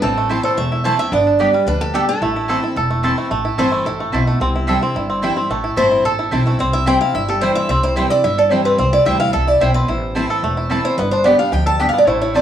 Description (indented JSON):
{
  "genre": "bluegrass",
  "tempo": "219 BPM",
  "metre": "4/4",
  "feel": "straight",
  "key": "A minor",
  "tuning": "A4 = 440 Hz",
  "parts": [
    { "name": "picked acoustic archtop guitar", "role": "melody", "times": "0.0-12.4 s", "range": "G4 to A5", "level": "-17 LUFS", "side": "equal", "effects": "cassette tape, plate reverb" },
    { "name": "lap resonator guitar", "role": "second line", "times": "0.0-3.1, 12.1-12.4 s", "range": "C4 to E4", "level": "-26 LUFS", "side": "equal", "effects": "cassette tape, plate reverb" },
    { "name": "picked steel-string acoustic guitar", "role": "accompaniment", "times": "0.0-12.4 s", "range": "E2 to G4", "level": "-23 LUFS", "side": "left 2 dB", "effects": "cassette tape, plate reverb" },
    { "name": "bluegrass banjo", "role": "arpeggios", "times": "0.0-12.4 s", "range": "E3 to A4", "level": "-21 LUFS", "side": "right 2 dB", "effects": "cassette tape, plate reverb" },
    { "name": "upright bass", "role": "bass", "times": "0.0-12.4 s", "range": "E1 to D2", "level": "-22 LUFS", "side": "equal", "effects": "none" },
    { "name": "mandolin", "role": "stabs", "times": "0.3-12.4 s", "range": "B3 to A5", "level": "-23 LUFS", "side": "right 3 dB", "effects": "cassette tape, plate reverb" }
  ],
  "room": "moderate small room reverb, RT60 0.5 s",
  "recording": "home recording on cassette, small room ambience",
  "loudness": "-14 LUFS",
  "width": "side -10 dB against mid",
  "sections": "0.0-3.3 A section; 3.3-12.4 B section",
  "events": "steel-string acoustic guitar solo 3.3-12.4",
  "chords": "0.0 Am; 1.1 G; 2.2 Am; 4.4 C; 5.5 Am; 6.6 C; 9.9 Am; 11.0 G",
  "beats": "| 0.03 0.30 0.58 0.85 | 1.12 1.40 1.67 1.94 | 2.22 2.49 2.77 3.04 | 3.31 3.59 3.86 4.13 | 4.41 4.68 4.96 5.23 | 5.50 5.78 6.05 6.33 | 6.60 6.87 7.15 7.42 | 7.69 7.97 8.24 8.52 | 8.79 9.06 9.34 9.61 | 9.88 10.16 10.43 10.71 | 10.98 11.25 11.53 11.80 | 12.07 12.35"
}